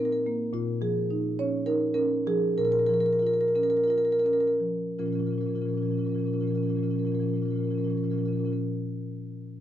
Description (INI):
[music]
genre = classical, contemporary piece for solo marimba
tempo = 155-222 BPM (eighths)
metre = 7/8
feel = rubato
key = Bb minor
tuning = A4 = 440 Hz
[part]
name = marimba with medium mallets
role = solo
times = 0.0-8.6 s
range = Bb2 to Db5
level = -24 LUFS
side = equal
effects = none
[sound]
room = light reverb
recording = dark, warm production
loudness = -24 LUFS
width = side -11 dB against mid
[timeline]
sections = 0.0-5.0 A section; 5.0-9.6 B section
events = slowing down 0.0-5.0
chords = 0.0 Eb5/Bb; 0.5 Bbm7; 2.6 Bbm